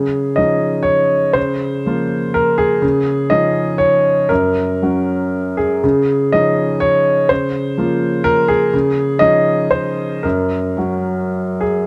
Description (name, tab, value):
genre	neoclassical minimalist piano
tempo	108-128 BPM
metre	3/4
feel	rubato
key	Db major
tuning	A4 = 440 Hz
part	clear upright piano	solo	0.0-11.9 s	Gb2 to Eb5	-16 LUFS	equal	none
room	light reverb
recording	dark, warm production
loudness	-16 LUFS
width	mono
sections	0.0-11.9 A section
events	none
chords	0.0 Dbadd9; 1.4 Bbm/Db; 2.8 Dbadd9; 4.3 Gb; 5.8 Dbadd9; 7.3 Bbm/Db; 8.7 Dbadd9; 10.2 Gb